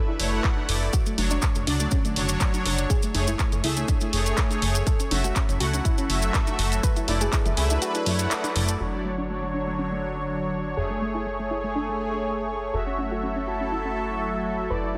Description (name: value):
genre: progressive house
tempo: 122 BPM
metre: 4/4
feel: straight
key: F# minor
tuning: A4 = 440 Hz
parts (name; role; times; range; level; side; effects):
- lush unison pad; sustained chords; 0.0-15.0 s; D3 to C#5; -34 LUFS; equal; chorus, phaser, sidechain pumping
- soft round pluck; arpeggios; 0.0-15.0 s; A3 to B4; -35 LUFS; equal; lush chorus, sidechain pumping, delay
- soft supersaw; stabs; 0.2-15.0 s; F#3 to F#5; -32 LUFS; equal; sidechain pumping, low-pass filter, delay
- plucky analog bass; bass; 0.2-15.0 s; F#1 to F#2; -31 LUFS; equal; sidechain pumping
- house drum kit; drums; 0.2-8.8 s; handclaps, hi-hat; -32 LUFS; equal; sidechain pumping on hats, low-pass filter on hats, low-pass filter on snare
- electronic kick drum; drums; 0.4-7.4 s; none; -26 LUFS; equal; none
- congas; percussion; 0.6-8.5 s; none; -39 LUFS; equal; sidechain pumping on perc
- maracas; percussion; 0.9-8.8 s; none; -36 LUFS; equal; none
room: light reverb, digital ambience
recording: dense, heavily limited modern master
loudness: -25 LUFS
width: mono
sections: 0.0-8.8 A section; 8.8-15.0 B section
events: filter sweep on synth pluck 0.0-8.8, 8.8-15.0; filter sweep on analog synth pad 0.0-8.8; kick drops out 7.8-8.8; band accent 8.3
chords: 0.0 E7sus4/F#; 0.9 Dmaj7/F#; 2.9 Amaj7/F#; 4.9 F#m7; 6.8 E7sus4/F#; 8.8 Dmaj7/F#; 10.8 Amaj7/F#; 12.7 F#m7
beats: 0.44 | 0.93 1.43 1.92 2.41 | 2.90 3.39 3.88 4.38 | 4.87 5.36 5.85 6.34 | 6.83 7.33 7.82 8.31 | 8.80 9.29 9.79 10.28 | 10.77 11.26 11.75 12.24 | 12.74 13.23 13.72 14.21 | 14.70